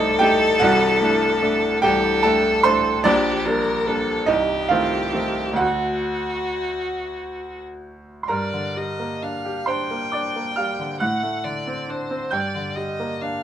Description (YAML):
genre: classical, romantic duo for violin and grand piano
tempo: 43-50 BPM (dotted quarters)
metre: 6/8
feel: rubato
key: G minor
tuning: A4 = 440 Hz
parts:
  - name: rich violin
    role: melody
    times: 0.0-13.4 s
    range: F#4 to G5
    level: -23 LUFS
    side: left 2 dB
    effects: none
  - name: bright grand piano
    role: accompaniment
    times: 0.0-13.4 s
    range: C1 to G6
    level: -21 LUFS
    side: right 2 dB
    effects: none
room: light reverb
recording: none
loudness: -19 LUFS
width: side -10 dB against mid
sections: 0.0-8.3 A section; 8.3-13.4 B section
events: none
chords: 0.0 Adim/C; 0.6 D7/C; 3.1 Gm/Bb; 4.3 Adim/C; 5.6 D; 8.3 Gm; 11.0 D7/A; 12.3 Gm